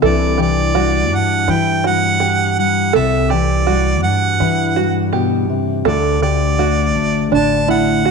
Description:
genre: acoustic folk duo or small band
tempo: 82 BPM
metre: 4/4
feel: straight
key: unclear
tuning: A4 = 440 Hz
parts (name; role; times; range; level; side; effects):
- warm harmonica; melody; 0.0-8.1 s; D5 to A5; -19 LUFS; right 3 dB; none
- fingerpicked steel-string acoustic guitar; accompaniment; 0.0-8.1 s; D2 to F#4; -18 LUFS; left 8 dB; none
- open-back banjo; arpeggios; 0.0-8.1 s; D4 to A4; -19 LUFS; right 9 dB; none
- upright bass; bass; 0.0-8.1 s; A1 to G2; -20 LUFS; right 1 dB; none
room: moderate echo chamber reverb, RT60 1.9 s, small room ambience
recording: 1960s-style stereo with parts hard left and right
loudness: -13 LUFS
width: side -5 dB against mid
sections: 0.0-8.1 A section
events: none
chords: 0.0 Cadd9; 5.9 D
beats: | 0.02 0.75 1.48 2.21 | 2.94 3.67 4.40 5.13 | 5.86 6.59 7.32 8.05

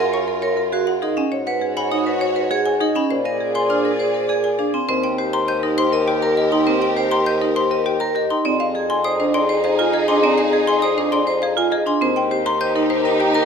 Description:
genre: classical, minimalist pattern music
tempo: 101 BPM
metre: 3/4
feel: straight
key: Eb major from 4.9 s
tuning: A4 = 439 Hz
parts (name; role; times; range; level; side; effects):
- marimba with hard mallets; melody; 0.0-13.4 s; G4 to Bb5; -24 LUFS; left 8 dB; none
- mellow French horn; second line; 0.0-13.4 s; F#4 to A#4; -26 LUFS; right 2 dB; none
- rich symphonic string section; sustained chords; 0.0-13.4 s; Eb4 to D5; -26 LUFS; left 1 dB; none
- vibraphone with hard mallets; arpeggios; 0.0-13.4 s; B#3 to Eb5; -22 LUFS; right 5 dB; none
- xylophone with rubber mallets; arpeggios; 0.0-13.4 s; D#5 to G6; -25 LUFS; left 2 dB; none
- warm bassoon; bass; 0.0-13.4 s; Eb2 to A#2; -24 LUFS; equal; none
room: wet recital hall reverb, RT60 1.4 s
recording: none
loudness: -16 LUFS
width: side -6 dB against mid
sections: 0.0-4.9 A section; 4.9-13.4 B section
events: none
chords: 0.0 F#maj9; 1.3 C#7sus4/G#; 3.1 A#7; 4.9 Eb; 8.5 Fm7; 12.0 Eb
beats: 0.13 0.73 | 1.32 1.92 2.51 | 3.10 3.70 4.29 | 4.89 5.48 6.07 | 6.67 7.26 7.86 | 8.45 9.04 9.64 | 10.23 10.83 11.42 | 12.02 12.61 13.20

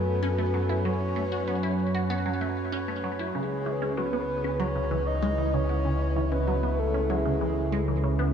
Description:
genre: ambient, sequencer-driven space music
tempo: 96 BPM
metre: 4/4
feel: straight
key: C# minor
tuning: A4 = 440 Hz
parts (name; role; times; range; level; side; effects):
- breathy flute-like synth lead; melody; 0.0-8.0 s; G#4 to D#5; -32 LUFS; left 1 dB; chorus, cassette tape, tape echo
- sweeping resonant pad; sustained chords; 0.0-8.3 s; C#3 to G#5; -30 LUFS; right 1 dB; chorus, phaser
- fat analog bass; bass; 0.0-8.3 s; C#2 to F#2; -29 LUFS; equal; none
- resonant blip pluck; riff; 0.2-8.3 s; C#3 to F#4; -32 LUFS; equal; phaser, tape echo
room: wet cathedral reverb, RT60 6.0 s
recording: in a vast, echoing space, cassette tape, small room ambience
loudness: -25 LUFS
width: side -8 dB against mid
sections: 0.0-3.3 A section; 3.3-8.3 B section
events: none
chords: 0.0 F#5; 3.3 C#m7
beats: 0.22 | 0.85 1.47 2.10 2.72 | 3.35 3.97 4.60 5.22 | 5.85 6.47 7.10 7.72

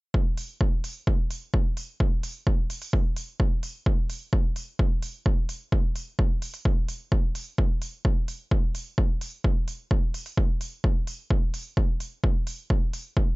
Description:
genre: EDM, festival progressive house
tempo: 129 BPM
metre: 4/4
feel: straight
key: none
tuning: none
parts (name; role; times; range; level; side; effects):
- electronic kick drum; drums; 0.1-13.3 s; none; -23 LUFS; equal; none
- electronic hi-hat; drums; 0.4-13.0 s; none; -38 LUFS; right 2 dB; none
room: little or no reverb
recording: nothing above 7.6 kHz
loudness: -24 LUFS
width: side -23 dB against mid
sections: 0.1-13.4 A section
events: none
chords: none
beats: | 0.14 0.61 1.07 1.54 | 2.00 2.47 2.93 3.40 | 3.86 4.33 4.79 5.26 | 5.72 6.19 6.65 7.12 | 7.58 8.05 8.51 8.98 | 9.44 9.91 10.38 10.84 | 11.30 11.77 12.23 12.70 | 13.16

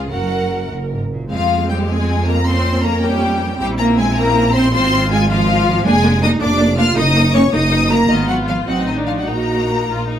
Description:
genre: quick classical-period movement for string orchestra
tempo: 98-110 BPM (dotted quarters)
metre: 6/8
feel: rubato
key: F minor, Eb minor from 5.9 s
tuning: A4 = 440 Hz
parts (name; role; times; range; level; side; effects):
- rich chamber violin section; second line; 0.0-10.2 s; Eb4 to F5; -23 LUFS; left 7 dB; none
- rich chamber viola section; accompaniment; 0.0-10.2 s; Ab3 to A#4; -20 LUFS; right 1 dB; none
- rich chamber double bass section; bass; 0.0-10.2 s; F1 to F2; -19 LUFS; right 1 dB; none
- rich studio cello section; bass; 0.0-10.2 s; F#2 to F4; -20 LUFS; right 2 dB; none
- rich studio violin section; melody; 0.1-10.2 s; Eb5 to F6; -21 LUFS; left 3 dB; none
room: light reverb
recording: none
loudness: -13 LUFS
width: side -10 dB against mid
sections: 0.0-1.3 A section; 1.3-10.2 B section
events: none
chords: 0.1 F#; 1.3 Fm; 2.5 Gdim/F; 3.6 C7/Bb; 4.7 Fm/Ab; 5.9 Bb7/F; 7.0 Ebm/Gb; 8.1 Fm7b5/Ab; 8.7 Adim7; 9.3 Ebm/Bb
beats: | 0.11 0.72 | 1.31 1.89 | 2.46 3.03 | 3.60 4.17 | 4.74 5.30 | 5.86 6.41 | 6.97 7.53 | 8.09 8.67 | 9.27 9.88

